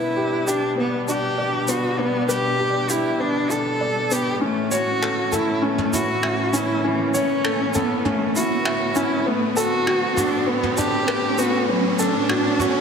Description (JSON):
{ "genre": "piano and strings electronica", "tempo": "99 BPM", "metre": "4/4", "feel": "straight", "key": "unclear", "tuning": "A4 = 440 Hz", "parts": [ { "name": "warm cello", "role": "melody", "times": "0.0-12.8 s", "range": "E3 to A4", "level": "-23 LUFS", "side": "equal", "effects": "none" }, { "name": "dark studio string section", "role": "sustained chords", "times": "0.0-12.8 s", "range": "A2 to D4", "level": "-28 LUFS", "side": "equal", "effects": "stereo widening" }, { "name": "felt-muted upright piano", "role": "riff", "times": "0.0-12.8 s", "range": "B3 to E5", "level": "-24 LUFS", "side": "left 1 dB", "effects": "none" }, { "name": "riser", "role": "sound effects", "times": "0.0-12.8 s", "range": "none", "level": "-29 LUFS", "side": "right 3 dB", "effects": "none" }, { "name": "vintage brush drum kit", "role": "drums", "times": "0.5-12.7 s", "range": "finger snaps, shaker, toms", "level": "-28 LUFS", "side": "right 1 dB", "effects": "none" } ], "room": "wet concert hall reverb, RT60 2.2 s", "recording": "none", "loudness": "-19 LUFS", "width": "side -6 dB against mid", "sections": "0.0-12.8 A section", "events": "build-up 0.0-12.8; riser 0.0-12.8", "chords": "0.0 G; 4.4 A; 9.3 Bm7" }